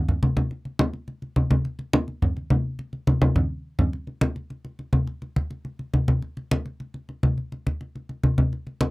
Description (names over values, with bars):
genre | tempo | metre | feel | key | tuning
jazz | 210 BPM | 4/4 | straight | none | none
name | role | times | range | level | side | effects
congas | percussion | 0.1-8.9 s | none | -22 LUFS | equal | none
room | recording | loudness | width
light reverb | dry, close 1970s-style studio recording | -23 LUFS | side -23 dB against mid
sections
0.0-3.9 A section; 3.9-8.9 B section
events
drum fill 3.1-3.9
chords
none